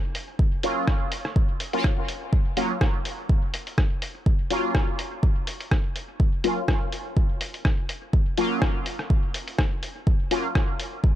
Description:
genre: dub techno.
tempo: 124 BPM.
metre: 4/4.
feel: swing 55% on 16ths.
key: unclear.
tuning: A4 = 436 Hz.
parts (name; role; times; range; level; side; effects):
lo-fi sampler-style drum kit; drums; 0.1-10.9 s; hi-hat, rim click; -31 LUFS; equal; none.
electronic kick drum; drums; 0.4-11.1 s; none; -22 LUFS; equal; none.
resonant sweep polysynth; stabs; 0.6-10.5 s; Gb3 to F4; -28 LUFS; left 1 dB; chorus, phaser, sidechain pumping, dub echo.
room: little or no reverb.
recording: dark, warm production.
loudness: -22 LUFS.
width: side -13 dB against mid.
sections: 0.0-11.2 A section.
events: none.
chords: 0.0 Gbmaj7.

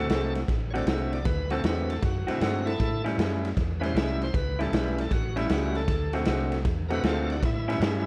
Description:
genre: electric blues shuffle.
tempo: 156 BPM.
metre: 4/4.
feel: swing 66% on 8ths.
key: D mixolydian.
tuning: A4 = 444 Hz.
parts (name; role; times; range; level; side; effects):
bright tonewheel organ; accompaniment; 0.0-8.1 s; D4 to E5; -37 LUFS; equal; slow rotary speaker, overdrive.
electric guitar through a small old amp; riff; 0.0-8.1 s; A2 to F#4; -32 LUFS; equal; none.
vintage muted fingered electric bass; bass; 0.0-8.1 s; A1 to A2; -33 LUFS; equal; none.
raw garage drum kit; drums; 0.1-7.9 s; kick drum, ride cymbal, snare drum; -31 LUFS; equal; none.
room: light reverb, studio reverb.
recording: none.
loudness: -27 LUFS.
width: mono.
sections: 0.0-8.1 A section.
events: none.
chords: 0.0 D7; 2.8 A7; 5.9 D7; 7.4 A7.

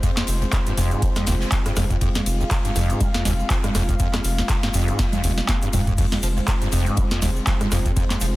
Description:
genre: acid house.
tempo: 121 BPM.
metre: 4/4.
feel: swing 56% on 16ths.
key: F minor.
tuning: A4 = 439 Hz.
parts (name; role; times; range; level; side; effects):
dark analog pad; sustained chords; 0.0-8.4 s; Ab3 to F5; -29 LUFS; equal; chorus, sidechain pumping.
acid bass, saw; riff; 0.0-8.3 s; F1 to F3; -25 LUFS; equal; overdrive, ensemble chorus.
booming analog drum machine; drums; 0.0-8.3 s; congas, crash cymbal, handclaps, hi-hat, rim click, snare drum, toms; -26 LUFS; right 1 dB; none.
electronic kick drum; drums; 0.0-8.1 s; none; -23 LUFS; equal; none.
gated 80s drum kit; drums; 0.0-8.3 s; ride cymbal, snare drum; -36 LUFS; left 4 dB; sidechain pumping on cymbals, high-pass filter on cymbals, high-pass filter on snare, high-pass filter on room.
egg shaker; percussion; 0.0-8.3 s; none; -38 LUFS; right 3 dB; none.
round analog bass; bass; 0.3-8.4 s; Eb1 to F1; -24 LUFS; equal; sidechain pumping.
room: light reverb, small room ambience.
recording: dense, heavily limited modern master.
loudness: -19 LUFS.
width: side -18 dB against mid.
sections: 0.0-8.4 A section.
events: drum fill 5.0-6.0.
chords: 0.0 Fm.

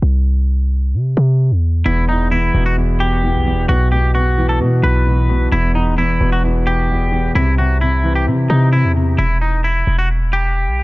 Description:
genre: hip hop, trap.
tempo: 131 BPM.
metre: 4/4.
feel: half-time.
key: E harmonic minor.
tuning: A4 = 441 Hz.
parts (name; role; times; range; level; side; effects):
warm 808-style bass; bass; 0.0-10.8 s; D#1 to C3; -15 LUFS; equal; none.
twangy electric guitar; melody; 1.9-10.8 s; D#4 to B4; -20 LUFS; equal; dub echo.
dark concert grand piano; accompaniment; 1.9-9.2 s; E2 to E3; -19 LUFS; equal; dub echo.
room: studio reverb.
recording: echo-heavy mix.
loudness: -13 LUFS.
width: side -21 dB against mid.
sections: 0.0-10.8 A section.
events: break 0.0-1.9, 9.2-10.8.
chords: 0.0 C; 1.9 Em; 3.7 Bsus4; 5.5 Em; 7.4 C; 9.2 Em.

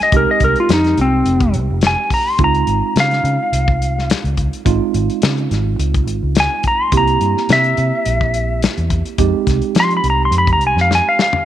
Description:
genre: straight-eighth soul blues.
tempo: 106 BPM.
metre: 4/4.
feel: swing 53% on 16ths.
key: F minor.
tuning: A4 = 439 Hz.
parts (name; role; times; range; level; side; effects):
clean lap steel guitar; melody; 0.0-11.4 s; C4 to C6; -15 LUFS; left 1 dB; none.
mellow tine electric piano; accompaniment; 0.0-11.4 s; Ab3 to G4; -22 LUFS; right 14 dB; medium stereo tremolo.
warm soul drum kit; drums; 0.0-11.4 s; hi-hat, kick drum, snare drum, toms; -19 LUFS; left 3 dB; none.
vintage muted fingered electric bass; bass; 0.1-11.0 s; F1 to F3; -18 LUFS; equal; none.
room: light reverb, studio ambience.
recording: 1960s-style stereo.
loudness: -13 LUFS.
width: side -11 dB against mid.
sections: 0.0-11.4 A section.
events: electric slide guitar solo 0.0-11.4; drum fill 10.9-11.4.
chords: 0.0 Fm7; 2.4 Dbmaj7; 6.9 C7; 9.2 Fm7.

